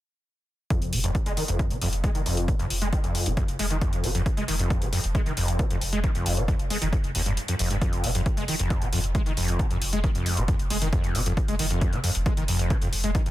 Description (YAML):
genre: driving peak-time techno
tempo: 135 BPM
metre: 4/4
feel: straight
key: F minor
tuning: A4 = 443 Hz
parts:
  - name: overdriven acid bass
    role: riff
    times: 0.7-13.3 s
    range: Eb2 to Ab3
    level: -28 LUFS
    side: equal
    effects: distortion, ensemble chorus, sidechain pumping, tape echo
  - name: electronic hi-hat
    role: drums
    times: 0.7-13.3 s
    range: none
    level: -32 LUFS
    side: left 1 dB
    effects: overdrive
  - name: electronic kick drum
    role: drums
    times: 0.7-13.2 s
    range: none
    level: -26 LUFS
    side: equal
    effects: none
  - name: saturated sub bass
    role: bass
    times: 0.8-13.3 s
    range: F1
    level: -29 LUFS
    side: equal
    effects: overdrive, sidechain pumping, low-pass filter
room: light reverb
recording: dense, heavily limited modern master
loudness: -23 LUFS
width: side -15 dB against mid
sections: 0.7-7.8 A section; 7.8-13.3 B section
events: filter sweep on acid bass 0.7-7.8; kick drops out 7.4-7.8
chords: 0.7 F5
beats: | 0.70 1.15 1.59 2.04 | 2.48 2.93 3.37 3.81 | 4.26 4.70 5.15 5.59 | 6.04 6.48 6.93 7.37 | 7.82 8.26 8.70 9.15 | 9.59 10.04 10.48 10.93 | 11.37 11.81 12.26 12.70 | 13.15